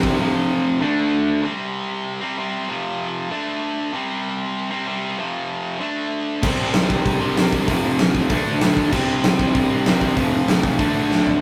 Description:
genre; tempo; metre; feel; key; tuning
punk rock; 192 BPM; 4/4; straight; unclear; A4 = 440 Hz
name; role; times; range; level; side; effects
distorted electric guitar; riff; 0.0-11.4 s; F2 to D4; -26 LUFS; equal; overdrive
distorted electric guitar; riff; 0.0-1.4, 6.4-11.4 s; F2 to D4; -23 LUFS; equal; distortion
fuzz picked electric bass; bass; 0.0-0.2, 6.4-11.4 s; F1 to E2; -30 LUFS; equal; none
big rock drum kit; drums; 0.0-0.1, 6.4-11.3 s; crash cymbal, hi-hat, kick drum, snare drum, toms; -22 LUFS; equal; none
room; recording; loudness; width
moderate studio ambience, RT60 0.5 s; rough rehearsal-room recording; -21 LUFS; mono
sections
0.0-1.4 A section; 1.4-11.4 A section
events
drum fill 11.1-11.4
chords
0.2 F5; 0.8 D5; 1.4 C5; 2.7 F5; 3.3 D5; 3.9 C5; 5.2 F5; 5.8 D5; 6.4 C5; 7.7 F5; 8.3 D5; 8.9 C5; 10.2 F5; 10.8 D5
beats
| 0.19 0.50 0.81 1.12 | 1.44 1.75 2.06 2.38 | 2.69 3.00 3.31 3.62 | 3.94 4.25 4.56 4.87 | 5.19 5.50 5.81 6.12 | 6.43 6.75 7.06 7.37 | 7.68 7.99 8.30 8.61 | 8.93 9.24 9.55 9.86 | 10.17 10.48 10.79 11.11

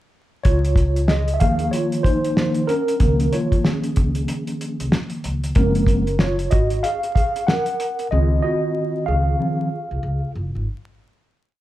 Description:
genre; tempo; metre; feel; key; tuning
hip hop, jazz-hop; 94 BPM; 4/4; swing 61% on 16ths; Db major; A4 = 440 Hz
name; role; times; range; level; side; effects
mellow tine electric piano; accompaniment; 0.4-10.6 s; Eb3 to Gb5; -21 LUFS; equal; medium stereo tremolo
cloth-damped thuddy drum kit; drums; 0.4-8.1 s; hi-hat, kick drum, snare drum; -20 LUFS; equal; none
upright bass; bass; 0.5-10.6 s; Gb1 to Eb2; -22 LUFS; equal; none
room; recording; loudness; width
light reverb; band playing live in one room, vinyl crackle; -18 LUFS; side -14 dB against mid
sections
0.5-10.7 A section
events
tine electric piano solo 0.5-10.7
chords
0.5 Db6; 5.6 Gbmaj9#11; 8.1 Dbmaj9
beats
| 0.45 1.09 1.73 2.37 | 3.01 3.65 4.28 4.92 | 5.56 6.20 6.84 7.47 | 8.11 8.75 9.39 10.03

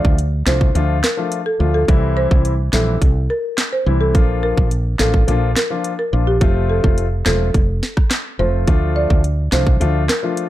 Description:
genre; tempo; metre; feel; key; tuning
dancehall; 106 BPM; 4/4; straight; D minor; A4 = 440 Hz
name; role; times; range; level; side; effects
folk marimba with medium mallets; melody; 0.0-10.2 s; G4 to D5; -22 LUFS; right 1 dB; ping-pong delay
dark baby grand piano; accompaniment; 0.0-10.4 s; E3 to F4; -22 LUFS; left 4 dB; none
woody fretless electric bass; bass; 0.0-10.1 s; E1 to D2; -18 LUFS; equal; none
island pop drum kit; drums; 0.0-10.5 s; handclaps, hi-hat, kick drum, rim click, snare drum; -16 LUFS; equal; overdrive
room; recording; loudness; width
studio ambience; dark, warm production; -14 LUFS; side -14 dB against mid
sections
0.0-10.5 A section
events
none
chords
0.0 Dm; 1.9 C; 4.1 Bb; 6.4 F; 8.7 Dm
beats
0.18 0.75 1.32 | 1.88 2.45 3.02 3.58 | 4.15 4.71 5.28 5.84 | 6.41 6.98 7.54 8.11 | 8.68 9.24 9.81 10.37

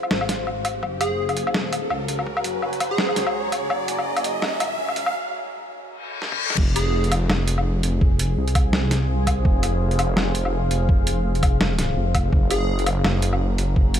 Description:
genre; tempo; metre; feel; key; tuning
half-time drum and bass; 167 BPM; 4/4; swing 57% on 16ths, half-time; F phrygian; A4 = 441 Hz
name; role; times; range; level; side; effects
deep dark ambient pad; sustained chords; 0.0-14.0 s; Gb4 to Bb5; -29 LUFS; left 2 dB; chorus, built-in reverb, sidechain pumping
boom bap sampler-style drum kit; drums; 0.0-14.0 s; crash cymbal, hi-hat, snare drum, toms, woodblock; -25 LUFS; left 1 dB; none
riser and reverse cymbal; sound effects; 0.0-6.6 s; none; -29 LUFS; equal; none
dark detuned saw bass; bass; 0.1-14.0 s; F1 to Db2; -23 LUFS; equal; tube saturation
electronic kick drum; drums; 0.6-3.8, 6.6-13.8 s; none; -20 LUFS; equal; high-pass filter on kick
plucky unison lead; melody; 1.0-3.4, 6.8-7.1, 12.5-12.9 s; Ab4; -29 LUFS; equal; digital delay
room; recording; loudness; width
light reverb; high-pass filter; -19 LUFS; side -9 dB against mid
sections
0.0-6.6 A section; 6.6-14.0 B section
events
build-up 0.0-6.6; riser 0.0-5.1; filter sweep 0.0-6.6; break 5.1-6.6; reverse cymbal 6.0-6.6; drum fill 6.2-6.6; drop 6.6-14.0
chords
0.0 Fm; 0.8 Gbadd9; 6.6 Fm; 12.3 Gbadd9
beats
0.11 0.47 | 0.83 1.19 1.55 1.91 | 2.27 2.62 2.98 3.34 | 3.70 4.06 4.42 4.78 | 5.14 5.50 5.86 6.22 | 6.58 6.94 7.30 7.66 | 8.02 8.37 8.73 9.09 | 9.45 9.81 10.17 10.53 | 10.89 11.25 11.61 11.97 | 12.33 12.69 13.04 13.40 | 13.76

